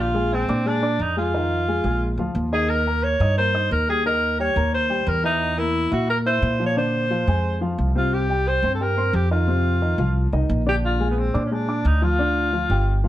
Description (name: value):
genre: Afro-Cuban jazz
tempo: 177 BPM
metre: 4/4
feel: straight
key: Bb mixolydian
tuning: A4 = 440 Hz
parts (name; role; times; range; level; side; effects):
- breathy alto saxophone; melody; 0.0-13.0 s; Cb4 to Db5; -23 LUFS; equal; plate reverb
- warm upright piano; accompaniment; 0.0-13.1 s; C3 to Fb6; -26 LUFS; left 2 dB; none
- upright bass; bass; 0.0-13.1 s; G1 to Bb2; -22 LUFS; equal; none
room: light reverb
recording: none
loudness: -19 LUFS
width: side -14 dB against mid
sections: 0.0-13.1 A section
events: none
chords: 0.0 Bb9; 1.3 Fm7; 2.0 Bb7; 2.7 Eb7; 5.4 Bb(b5, no3); 6.8 Bb9; 8.1 Cm7; 9.5 F5; 10.8 Bb7; 12.2 Dmadd11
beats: 0.32 0.66 1.00 | 1.33 1.68 2.01 2.35 | 2.69 3.03 3.37 3.71 | 4.05 4.39 4.73 5.07 | 5.41 5.75 6.09 6.42 | 6.76 7.10 7.44 7.78 | 8.12 8.46 8.80 9.14 | 9.48 9.82 10.16 10.50 | 10.84 11.18 11.52 11.85 | 12.19 12.53 12.87